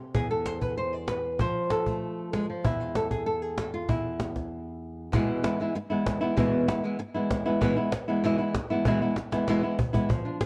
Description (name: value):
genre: flamenco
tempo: 193 BPM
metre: 4/4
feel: straight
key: E phrygian dominant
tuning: A4 = 440 Hz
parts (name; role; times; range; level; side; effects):
- flamenco guitar; melody; 0.0-10.5 s; E2 to D5; -29 LUFS; equal; none
- cajon; percussion; 0.1-10.5 s; none; -32 LUFS; equal; none
room: light reverb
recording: worn, warbling old tape, cassette tape, warbly pitch drift, lossy compression artefacts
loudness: -28 LUFS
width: mono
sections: 0.0-5.1 A section; 5.1-10.1 B section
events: stop 4.5-5.1; drum fill 9.2-10.1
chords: 0.0 N.C.; 1.4 F; 2.6 N.C.; 5.1 E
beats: | 0.15 0.46 0.77 1.08 | 1.40 1.71 2.02 2.33 | 2.64 2.96 3.27 3.58 | 3.89 4.20 4.51 4.82 | 5.13 5.45 5.75 6.07 | 6.38 6.68 6.99 7.30 | 7.61 7.92 8.23 8.54 | 8.85 9.16 9.47 9.78 | 10.10 10.40